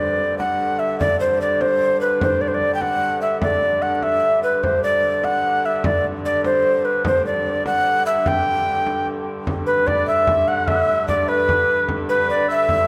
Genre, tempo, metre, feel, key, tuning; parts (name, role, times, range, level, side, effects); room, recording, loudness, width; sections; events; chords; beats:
medieval dance; 99 BPM (dotted quarters); 6/8; straight; G major; A4 = 438 Hz
breathy mellow tenor recorder; melody; 0.0-12.9 s; B4 to G5; -20 LUFS; equal
warm hurdy-gurdy; drone; 0.0-12.9 s; G2 to D3; -30 LUFS; equal
frame drum; percussion; 0.2-12.9 s; -30 LUFS; equal
clear shawm; second line; 9.7-12.9 s; B4 to F#5; -27 LUFS; equal
wet concert hall reverb, RT60 2.4 s; -19 LUFS; mono
0.0-9.5 A section; 9.5-12.9 B section
0.39 | 1.00 1.60 | 2.21 2.82 | 3.42 4.03 | 4.63 5.24 | 5.84 6.45 | 7.05 7.66 | 8.26 8.86 | 9.47 10.07 | 10.68 11.28 | 11.88 12.48